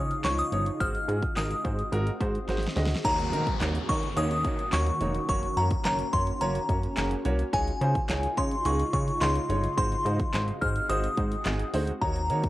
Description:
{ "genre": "dance-pop", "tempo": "107 BPM", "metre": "4/4", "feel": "straight", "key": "unclear", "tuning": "A4 = 440 Hz", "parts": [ { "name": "glassy synth bell", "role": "melody", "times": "0.0-12.5 s", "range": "Ab5 to F6", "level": "-30 LUFS", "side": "left 1 dB", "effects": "chorus, cassette tape, analog delay" }, { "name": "clear grand piano", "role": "accompaniment", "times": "0.0-12.5 s", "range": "F3 to Eb5", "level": "-34 LUFS", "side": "right 3 dB", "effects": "sidechain pumping, cassette tape" }, { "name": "shimmering ambient pad", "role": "sustained chords", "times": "0.1-12.5 s", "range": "Db3 to Gb4", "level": "-37 LUFS", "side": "equal", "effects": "chorus, built-in reverb, sidechain pumping, cassette tape" }, { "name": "plucky analog bass", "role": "bass", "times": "0.0-12.5 s", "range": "F1 to Eb3", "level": "-29 LUFS", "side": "equal", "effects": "sidechain pumping" }, { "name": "pop drum kit", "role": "drums", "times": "0.1-12.5 s", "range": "crash cymbal, handclaps, hi-hat, kick drum, snare drum", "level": "-31 LUFS", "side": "equal", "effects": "none" }, { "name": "downlifter", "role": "sound effects", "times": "3.0-7.5 s", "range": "none", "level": "-39 LUFS", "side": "equal", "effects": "none" } ], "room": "light reverb", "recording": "home recording on cassette", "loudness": "-25 LUFS", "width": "side -16 dB against mid", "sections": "0.0-3.0 A section; 3.0-12.5 B section", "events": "drum fill 2.5-3.0", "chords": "0.0 Dbadd9; 0.8 Ab7; 3.0 Ebm7; 5.3 Gb; 7.5 Dbadd9; 9.8 Ab7" }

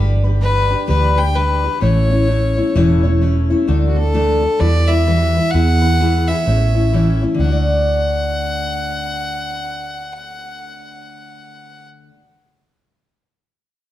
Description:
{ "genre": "honky-tonk and classic country", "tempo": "129 BPM", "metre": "4/4", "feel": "swing 62% on 8ths", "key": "D major", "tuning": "A4 = 441 Hz", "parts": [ { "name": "picked steel-string acoustic guitar", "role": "accompaniment", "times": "0.0-12.3 s", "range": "A2 to D5", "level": "-19 LUFS", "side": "left 2 dB", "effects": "none" }, { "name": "vintage muted fingered electric bass", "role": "bass", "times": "0.0-12.1 s", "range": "E1 to E2", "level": "-16 LUFS", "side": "right 1 dB", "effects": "none" }, { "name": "clear fiddle", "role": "melody", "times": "0.4-11.9 s", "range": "F#4 to G5", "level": "-21 LUFS", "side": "left 1 dB", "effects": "none" } ], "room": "moderate large studio reverb, RT60 1.3 s", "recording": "dark, warm production", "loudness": "-14 LUFS", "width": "side -13 dB against mid", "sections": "0.0-3.7 A section; 3.7-7.4 B section; 7.4-11.1 C section", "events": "none", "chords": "0.0 G; 1.8 A; 3.7 D; 4.6 Emadd9; 5.5 E; 6.5 A; 7.4 D" }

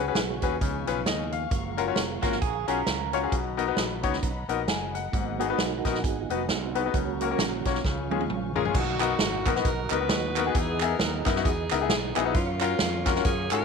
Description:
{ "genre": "uptempo gospel", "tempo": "133 BPM", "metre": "4/4", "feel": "swing 58% on 8ths", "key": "F# major", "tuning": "A4 = 440 Hz", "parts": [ { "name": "bright grand piano", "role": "accompaniment", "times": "0.0-13.6 s", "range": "G#2 to G#5", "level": "-28 LUFS", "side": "left 11 dB", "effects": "none" }, { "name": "dark studio string section", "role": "sustained chords", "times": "0.0-8.7 s", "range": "C#5 to C#6", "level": "-40 LUFS", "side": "left 2 dB", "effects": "none" }, { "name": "mellow tonewheel organ", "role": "sustained chords", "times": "0.0-13.6 s", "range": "D#3 to C#6", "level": "-35 LUFS", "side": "right 14 dB", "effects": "fast rotary speaker, chorus vibrato" }, { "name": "modern bright fingered electric bass", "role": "bass", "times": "0.0-13.6 s", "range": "E#1 to G#2", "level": "-34 LUFS", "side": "right 1 dB", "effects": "none" }, { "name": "swinging big-band drum kit", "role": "drums", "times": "0.2-13.6 s", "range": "crash cymbal, hi-hat, kick drum, snare drum, toms", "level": "-29 LUFS", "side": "right 2 dB", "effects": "none" }, { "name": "clean electric guitar", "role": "second line", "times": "2.2-3.3 s", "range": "A#3 to A#4", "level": "-31 LUFS", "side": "right 14 dB", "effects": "slapback echo" }, { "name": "warm saxophone section", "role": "melody", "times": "8.6-13.6 s", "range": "A#3 to B4", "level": "-31 LUFS", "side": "equal", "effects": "none" }, { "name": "group handclap", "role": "percussion", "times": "9.0-13.6 s", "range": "none", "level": "-33 LUFS", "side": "right 17 dB", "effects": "none" } ], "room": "moderate spring reverb, RT60 1.2 s", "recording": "1960s-style stereo with parts hard left and right, tape saturation", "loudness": "-24 LUFS", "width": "side -5 dB against mid", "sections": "0.0-8.7 A section; 8.7-13.6 B section", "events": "tonewheel organ solo 0.0-8.7; drum fill 7.8-8.7", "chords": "0.0 C#7sus4; 0.6 C#7; 1.5 F#maj7; 3.3 Bmaj7; 5.1 G#m7; 6.9 F#/C#; 7.8 C#; 8.7 Bmaj7; 10.5 Emaj7; 12.4 F#maj7" }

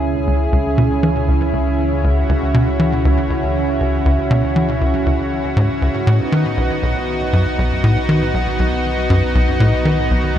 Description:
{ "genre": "ambient, sequencer-driven space music", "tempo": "119 BPM", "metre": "4/4", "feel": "straight", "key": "C# minor", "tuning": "A4 = 442 Hz", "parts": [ { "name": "lush unison pad", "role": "sustained chords", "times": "0.0-10.4 s", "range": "C#3 to G#4", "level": "-19 LUFS", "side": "right 1 dB", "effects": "chorus" }, { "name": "warm sub bass", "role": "bass", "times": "0.0-10.4 s", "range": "B1 to C#2", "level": "-23 LUFS", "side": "equal", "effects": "none" }, { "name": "tight sequencer bass", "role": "riff", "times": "0.3-10.4 s", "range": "B1 to E3", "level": "-17 LUFS", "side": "equal", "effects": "tape echo" } ], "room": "moderate huge ambient reverb, RT60 8.4 s", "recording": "cassette tape", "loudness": "-14 LUFS", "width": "side -10 dB against mid", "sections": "0.0-10.4 A section", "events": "none", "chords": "0.0 C#m; 6.1 B" }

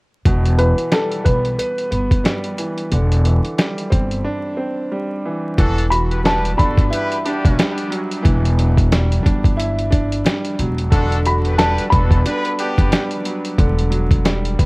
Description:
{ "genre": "hip hop, boom-bap hip-hop", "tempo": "90 BPM", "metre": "4/4", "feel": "swing 58% on 16ths", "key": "E minor", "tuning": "A4 = 440 Hz", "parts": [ { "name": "dusty soul sampler-style drum kit", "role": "drums", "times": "0.2-14.7 s", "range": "hi-hat, kick drum, snare drum", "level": "-17 LUFS", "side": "equal", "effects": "none" }, { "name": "warm concert grand piano", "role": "accompaniment", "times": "0.3-14.7 s", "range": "B2 to B4", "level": "-22 LUFS", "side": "right 1 dB", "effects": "cassette tape, high-pass filter, low-pass filter" }, { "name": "upright bass", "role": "bass", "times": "0.3-14.7 s", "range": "E1 to B1", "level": "-18 LUFS", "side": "equal", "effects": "none" }, { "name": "warm upright piano", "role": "melody", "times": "0.6-13.5 s", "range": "A4 to B5", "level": "-21 LUFS", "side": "left 1 dB", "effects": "high-pass filter, low-pass filter" }, { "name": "bright trumpet section", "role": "stabs", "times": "5.6-13.1 s", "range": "B3 to B4", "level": "-26 LUFS", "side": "equal", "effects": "high-pass filter, low-pass filter, digital delay" } ], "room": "little or no reverb", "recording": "worn, warbling old tape, cassette tape, vinyl crackle, warbly pitch drift", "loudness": "-15 LUFS", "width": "side -26 dB against mid", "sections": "0.2-5.6 A section; 5.6-14.7 B section", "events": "break 4.2-5.6", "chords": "0.2 Em; 2.9 Cadd9/E; 5.6 Em9" }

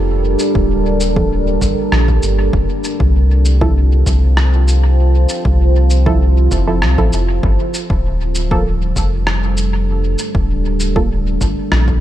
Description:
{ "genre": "ambient dub", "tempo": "98 BPM", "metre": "4/4", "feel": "straight", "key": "G minor", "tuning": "A4 = 440 Hz", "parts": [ { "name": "deep dark ambient pad", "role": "sustained chords", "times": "0.0-12.0 s", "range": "G3 to A5", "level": "-20 LUFS", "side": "right 2 dB", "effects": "chorus, built-in reverb" }, { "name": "soft dub sub bass", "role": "bass", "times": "0.0-12.0 s", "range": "D1 to C2", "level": "-13 LUFS", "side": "equal", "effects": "tube saturation" }, { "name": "electronic cabasa and rim click", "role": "drums", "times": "0.4-11.8 s", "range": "none", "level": "-23 LUFS", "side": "equal", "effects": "dub echo" }, { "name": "electronic kick drum", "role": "drums", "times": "0.6-12.0 s", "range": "none", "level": "-19 LUFS", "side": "equal", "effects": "overdrive" }, { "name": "filtered dub chord stab", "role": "stabs", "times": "1.2-11.1 s", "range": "F3 to A4", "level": "-24 LUFS", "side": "right 2 dB", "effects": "chorus, dub echo" } ], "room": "little or no reverb", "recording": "faint mains hum", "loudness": "-12 LUFS", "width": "side -12 dB against mid", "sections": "0.0-12.0 A section", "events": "none", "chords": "0.0 Gm9; 2.5 Fmaj7; 7.4 Gm9" }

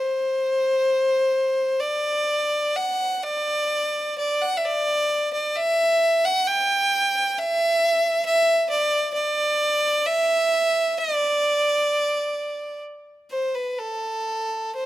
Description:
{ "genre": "celtic folk", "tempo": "65 BPM", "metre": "3/4", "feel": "uneven beats, rubato", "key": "D mixolydian", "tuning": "A4 = 443 Hz", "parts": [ { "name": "clear fiddle", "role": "solo", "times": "0.0-14.9 s", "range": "A4 to G5", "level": "-20 LUFS", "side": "equal", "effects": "none" } ], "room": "light reverb", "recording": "close, detailed microphones", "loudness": "-20 LUFS", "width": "side -14 dB against mid", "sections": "0.0-13.8 A section; 13.8-14.9 B section", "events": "none", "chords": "none" }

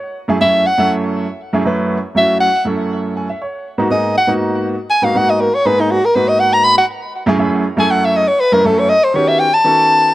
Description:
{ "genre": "jazz", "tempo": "240 BPM (eighths)", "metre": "7/8", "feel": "straight", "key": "G# phrygian", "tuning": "A4 = 444 Hz", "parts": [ { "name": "clear grand piano", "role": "accompaniment", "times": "0.0-10.1 s", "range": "F#2 to G#5", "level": "-17 LUFS", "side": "right 1 dB", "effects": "none" }, { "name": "mellow soprano saxophone", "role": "melody", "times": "0.4-10.1 s", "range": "D#4 to B5", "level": "-13 LUFS", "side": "equal", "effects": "none" } ], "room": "light reverb", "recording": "none", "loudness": "-12 LUFS", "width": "side -16 dB against mid", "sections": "0.0-10.1 A section", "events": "grand piano fill 0.0, 2.9-3.7, 9.9; soprano saxophone solo 0.0-10.1", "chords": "0.2 F#m9; 3.7 G#m9; 7.2 F#m9; 8.9 D#7alt" }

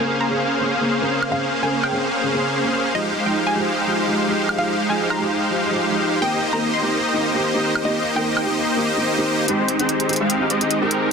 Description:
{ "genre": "future bass", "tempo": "147 BPM", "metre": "4/4", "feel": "swing 54% on 16ths, half-time", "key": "F minor", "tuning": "A4 = 440 Hz", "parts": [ { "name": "wide unison pluck", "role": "melody", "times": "0.0-8.7 s", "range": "Eb5 to C6", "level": "-28 LUFS", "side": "equal", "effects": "digital delay" }, { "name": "felt-muted upright piano", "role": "accompaniment", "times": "0.0-11.1 s", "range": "Db3 to C5", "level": "-25 LUFS", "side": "right 1 dB", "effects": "ping-pong delay" }, { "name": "supersaw chords", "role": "riff", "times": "0.0-11.1 s", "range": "Ab3 to F5", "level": "-19 LUFS", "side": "equal", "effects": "analog chorus, low-pass filter, ping-pong delay" }, { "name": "electronic woodblock and hi-hat", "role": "drums", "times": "1.2-1.9, 4.5-5.2, 7.8-11.0 s", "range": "none", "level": "-25 LUFS", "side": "right 1 dB", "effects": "low-pass filter on hats, low-pass filter on toms, low-pass filter on perc" }, { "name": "long sustained 808-style bass", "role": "bass", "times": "9.5-11.1 s", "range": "none", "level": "barely audible", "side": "none", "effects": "none" } ], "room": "light reverb, digital ambience", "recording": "dense, heavily limited modern master", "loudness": "-18 LUFS", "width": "side -6 dB against mid", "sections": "0.0-9.5 A section; 9.5-11.1 B section", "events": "build-up 9.5-11.1", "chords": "0.0 Bbm9; 3.0 Fm9; 6.2 Cm7; 9.5 Abmaj7" }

